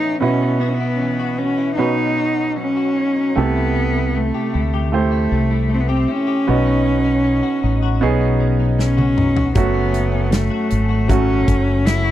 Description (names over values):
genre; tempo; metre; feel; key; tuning
pop ballad; 78 BPM; 4/4; straight; unclear; A4 = 440 Hz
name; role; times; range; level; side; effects
rich cello; melody; 0.0-12.1 s; A3 to E4; -20 LUFS; equal; tape echo
clear baby grand piano; accompaniment; 0.0-12.1 s; A1 to C5; -22 LUFS; right 5 dB; none
direct-recorded clean electric guitar; arpeggios; 0.0-12.1 s; F#2 to B4; -27 LUFS; left 12 dB; ensemble chorus
mellow fretless electric bass; bass; 3.4-12.1 s; F#1 to D2; -19 LUFS; left 1 dB; ensemble chorus
natural country drum kit; drums; 8.8-12.0 s; hi-hat, kick drum, snare drum, toms; -19 LUFS; left 1 dB; none
room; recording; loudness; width
light reverb; dry, close 1970s-style studio recording; -15 LUFS; side -12 dB against mid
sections
0.0-3.4 A section; 3.4-12.1 B section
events
drum fill 8.8-9.6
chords
0.2 Bsus4; 1.8 Badd9; 3.4 C6; 6.5 Badd9; 9.6 F#m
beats
| 0.22 1.00 1.78 2.58 | 3.37 4.15 4.93 5.70 | 6.47 7.25 8.02 8.79 | 9.56 10.32 11.10 11.87